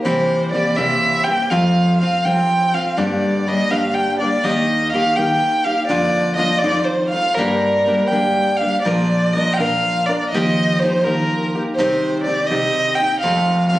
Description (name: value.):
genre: mexican folk, mariachi.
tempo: 82 BPM (dotted quarters).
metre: 6/8.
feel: straight.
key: Bb major.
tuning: A4 = 442 Hz.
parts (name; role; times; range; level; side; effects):
warm violin; melody; 0.0-13.8 s; Bb4 to G5; -18 LUFS; right 1 dB; none.
nylon-string guitar; accompaniment; 0.0-13.8 s; F2 to Bb4; -18 LUFS; equal; none.
upright bass; bass; 0.1-13.7 s; Bb1 to G3; -29 LUFS; equal; none.
room: moderate recital hall reverb, RT60 1.5 s.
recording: recorded on a phone in the room, club reverb, compression.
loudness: -15 LUFS.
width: side -15 dB against mid.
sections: 0.0-13.8 A section.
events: none.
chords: 0.1 C7; 1.5 F; 3.0 Gm; 4.5 Eb; 5.9 Bb/F; 6.6 F7; 7.4 Gm; 8.9 Bb; 10.3 Ebadd9; 11.8 Cm; 13.2 F.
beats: | 0.06 0.78 | 1.51 2.25 | 2.99 3.72 | 4.45 5.18 | 5.91 6.63 | 7.37 8.11 | 8.86 9.59 | 10.32 11.04 | 11.77 12.49 | 13.23.